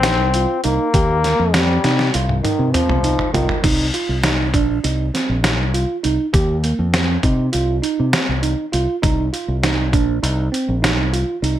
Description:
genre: progressive instrumental, band music in an uneven meter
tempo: 200 BPM (eighths)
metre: 9/8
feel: straight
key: C minor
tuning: A4 = 438 Hz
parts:
  - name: bright trombone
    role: second line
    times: 0.0-3.6 s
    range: Eb3 to C4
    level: -20 LUFS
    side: left 4 dB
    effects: plate reverb
  - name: tine electric piano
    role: arpeggios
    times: 0.0-11.6 s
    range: Bb3 to G4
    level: -22 LUFS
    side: right 4 dB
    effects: lush chorus, plate reverb
  - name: fingered electric bass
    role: bass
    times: 0.0-11.5 s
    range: Bb1 to C3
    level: -19 LUFS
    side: equal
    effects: none
  - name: trip hop sampler-style drum kit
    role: drums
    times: 0.0-11.6 s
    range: crash cymbal, hi-hat, kick drum, snare drum, toms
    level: -20 LUFS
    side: equal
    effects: none
room: light reverb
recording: none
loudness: -15 LUFS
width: side -12 dB against mid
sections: 0.0-3.6 A section; 3.6-11.6 B section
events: drum fill 1.8-3.6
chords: 0.0 Cm7

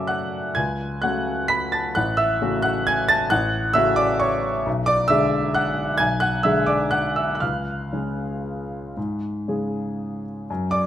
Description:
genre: classical, piano waltz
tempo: 112-144 BPM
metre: 3/4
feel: rubato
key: F# minor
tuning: A4 = 440 Hz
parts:
  - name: warm grand piano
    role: solo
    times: 0.0-10.9 s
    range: A1 to B6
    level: -20 LUFS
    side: equal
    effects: none
room: moderate recital hall reverb, RT60 1.3 s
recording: close, detailed microphones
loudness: -20 LUFS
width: side -11 dB against mid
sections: 0.0-10.9 A section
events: none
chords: 0.0 F#m; 2.0 F#m/A; 4.7 G#dim/B; 7.4 C#

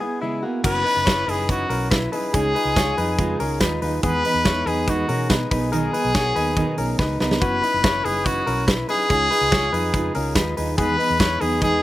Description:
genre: jangly indie pop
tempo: 142 BPM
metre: 4/4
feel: straight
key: unclear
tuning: A4 = 440 Hz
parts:
  - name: clear trumpet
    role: melody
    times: 0.0-11.8 s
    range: F#4 to B4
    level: -22 LUFS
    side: left 1 dB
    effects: none
  - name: fingerpicked steel-string acoustic guitar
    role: accompaniment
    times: 0.0-11.8 s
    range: B2 to B4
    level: -27 LUFS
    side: right 4 dB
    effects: none
  - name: direct-recorded clean electric guitar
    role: arpeggios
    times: 0.0-11.8 s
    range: G#3 to C#5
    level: -26 LUFS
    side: left 4 dB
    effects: vibrato effect
  - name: vintage muted fingered electric bass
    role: bass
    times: 0.6-11.8 s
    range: F#1 to B2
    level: -27 LUFS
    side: equal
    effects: none
  - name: big rock drum kit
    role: drums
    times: 0.6-11.7 s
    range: crash cymbal, hi-hat, kick drum, snare drum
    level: -24 LUFS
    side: right 1 dB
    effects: none
room: little or no reverb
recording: recorded outdoors, with no room sound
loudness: -18 LUFS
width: side -15 dB against mid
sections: 0.6-11.8 A section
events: break 0.0-0.6; drum fill 7.0-7.4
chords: 0.0 C#m7; 0.6 F#7sus4; 2.3 C#add9; 4.0 Emaj7; 5.5 Bmaj7; 7.4 F#7sus4; 9.1 C#add9; 10.8 Emaj7

